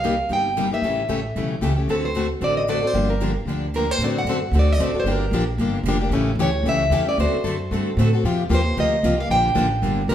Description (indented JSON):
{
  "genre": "acoustic string swing (jazz manouche)",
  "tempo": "227 BPM",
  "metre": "4/4",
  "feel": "swing 56% on 8ths",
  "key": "G minor",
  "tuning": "A4 = 440 Hz",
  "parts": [
    { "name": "picked plugged-in steel-string acoustic guitar", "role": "melody", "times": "0.0-10.1 s", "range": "A4 to G5", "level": "-23 LUFS", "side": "right 1 dB", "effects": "none" },
    { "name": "picked plugged-in steel-string acoustic guitar", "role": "accompaniment", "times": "0.0-10.1 s", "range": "C3 to A4", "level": "-24 LUFS", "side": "left 4 dB", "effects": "none" },
    { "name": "picked steel-string acoustic guitar", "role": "accompaniment", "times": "0.0-10.1 s", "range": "C3 to A4", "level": "-30 LUFS", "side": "right 5 dB", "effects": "none" },
    { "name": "upright bass", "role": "bass", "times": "0.0-10.1 s", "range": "F1 to A2", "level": "-23 LUFS", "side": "right 1 dB", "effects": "none" }
  ],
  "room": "wet large studio reverb, RT60 1.1 s",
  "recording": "band playing live in one room",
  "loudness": "-18 LUFS",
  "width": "side -10 dB against mid",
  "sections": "0.0-4.0 A section; 4.0-10.1 B section",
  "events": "none",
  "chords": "0.0 Cm7; 0.8 A7; 1.9 D7; 2.9 Gm7; 4.0 D7; 5.1 Gm7; 6.1 A7; 7.2 D7; 8.2 C7sus4; 9.3 Gm7"
}